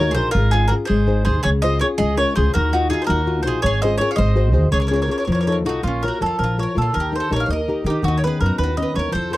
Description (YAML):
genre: italian folk, Italian serenade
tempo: 109 BPM (dotted quarters)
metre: 6/8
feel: straight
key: Db major, Bb harmonic minor from 5.8 s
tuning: A4 = 440 Hz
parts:
  - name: bowl-back mandolin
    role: melody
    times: 0.0-9.4 s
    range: F4 to F5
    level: -22 LUFS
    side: equal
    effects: none
  - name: bowl-back mandolin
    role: second line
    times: 0.0-9.4 s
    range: Db4 to Db5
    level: -29 LUFS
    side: right 5 dB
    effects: none
  - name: flamenco guitar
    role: accompaniment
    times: 0.0-9.4 s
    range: Db3 to Db5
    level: -22 LUFS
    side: left 3 dB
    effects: none
  - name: upright bass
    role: bass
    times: 0.0-9.4 s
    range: Ab1 to Eb3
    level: -20 LUFS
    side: equal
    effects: none
room: little or no reverb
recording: dry, close 1970s-style studio recording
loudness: -16 LUFS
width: side -16 dB against mid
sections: 0.0-5.8 A section; 5.8-9.4 B section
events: none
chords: 0.3 Db/Ab; 0.9 Ab; 1.4 Db; 2.5 Ebmadd9; 3.6 Db/Ab; 4.2 Ab7; 4.7 Db; 5.3 F7; 5.8 Bbm; 6.9 Eb; 8.0 Badd9/D#